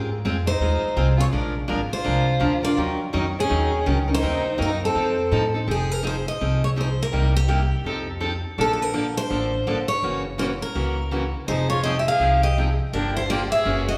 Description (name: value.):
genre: acoustic string swing (jazz manouche).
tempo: 166 BPM.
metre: 4/4.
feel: swing 61% on 8ths.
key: Bb minor, F minor from 5.7 s.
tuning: A4 = 440 Hz.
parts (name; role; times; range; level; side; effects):
picked steel-string acoustic guitar; accompaniment; 0.0-13.9 s; C3 to Bb4; -29 LUFS; equal; none.
upright bass; bass; 0.0-14.0 s; F1 to A2; -27 LUFS; equal; none.
picked steel-string acoustic guitar; melody; 0.5-14.0 s; G4 to F5; -27 LUFS; equal; none.
warm violin; second line; 0.5-5.5, 11.5-14.0 s; C4 to Ab4; -31 LUFS; equal; none.
room: wet recital hall reverb, RT60 1.8 s.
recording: recorded in a church or concert hall.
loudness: -23 LUFS.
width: mono.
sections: 0.0-5.7 A section; 5.7-14.0 B section.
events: none.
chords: 0.0 Ab6; 1.3 Bb7; 2.8 Ebm7; 4.2 Cm7b5; 5.0 F7; 5.7 Fm7; 7.1 Cm7; 7.9 F7; 8.6 Bbmaj7; 10.0 Gb7; 11.5 Fm7; 12.9 Gm7.